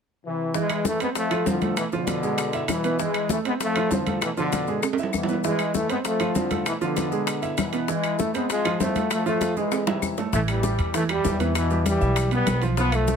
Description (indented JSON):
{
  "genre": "latin, salsa",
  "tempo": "196 BPM",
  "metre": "4/4",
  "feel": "straight",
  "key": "A harmonic minor",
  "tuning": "A4 = 440 Hz",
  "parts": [
    { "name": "bright trombone section", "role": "melody", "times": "0.2-13.2 s", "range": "B2 to B3", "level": "-25 LUFS", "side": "left 2 dB", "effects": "none" },
    { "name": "clear baby grand piano", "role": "accompaniment", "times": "0.5-13.2 s", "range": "E3 to E5", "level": "-28 LUFS", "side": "right 6 dB", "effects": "none" },
    { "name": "bongos", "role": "percussion", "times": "0.5-13.2 s", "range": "none", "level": "-31 LUFS", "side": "left 12 dB", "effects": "none" },
    { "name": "congas", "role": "percussion", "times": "0.5-13.2 s", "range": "none", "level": "-31 LUFS", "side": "left 5 dB", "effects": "none" },
    { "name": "maracas", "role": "percussion", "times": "0.5-13.2 s", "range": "none", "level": "-38 LUFS", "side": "left 6 dB", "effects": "none" },
    { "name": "claves", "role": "percussion", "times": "0.7-13.1 s", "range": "none", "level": "-34 LUFS", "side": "left 8 dB", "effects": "none" },
    { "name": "timbales", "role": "percussion", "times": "0.7-13.2 s", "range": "none", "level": "-31 LUFS", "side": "right 6 dB", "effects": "none" },
    { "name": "upright bass", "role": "bass", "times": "10.3-13.2 s", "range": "A1 to E2", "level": "-24 LUFS", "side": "equal", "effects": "none" }
  ],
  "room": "little or no reverb",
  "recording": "close, detailed microphones",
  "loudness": "-22 LUFS",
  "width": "side -6 dB against mid",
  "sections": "0.5-10.3 A section; 10.3-13.2 B section",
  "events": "drum fill 4.8-5.4, 9.7-10.3",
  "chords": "0.0 N.C.; 0.5 Am; 1.2 Dm7; 1.8 Bm7b5; 2.4 E7; 3.0 Am; 3.6 Dm7; 4.2 Bm7b5; 4.8 E; 5.4 Am; 6.1 Dm7; 6.7 Bm7b5; 7.3 E7; 7.9 Am; 8.5 F; 9.1 Fmaj7; 9.7 E; 10.3 A7sus2; 11.6 Em"
}